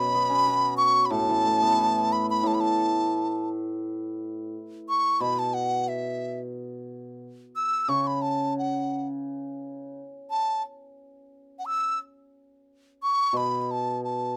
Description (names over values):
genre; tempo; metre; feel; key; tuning
chinese traditional; 89 BPM; 2/4; rubato; A gong mode; A4 = 439 Hz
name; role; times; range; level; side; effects
mellow hollow large dizi; melody; 0.0-14.4 s; E5 to E6; -26 LUFS; equal; none
hammered dulcimer; accompaniment; 0.0-10.0, 13.3-14.4 s; A2 to F#4; -32 LUFS; equal; none
room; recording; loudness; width
little or no reverb; close, detailed microphones; -26 LUFS; mono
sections
0.0-3.8 A section; 3.8-14.4 B section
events
none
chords
none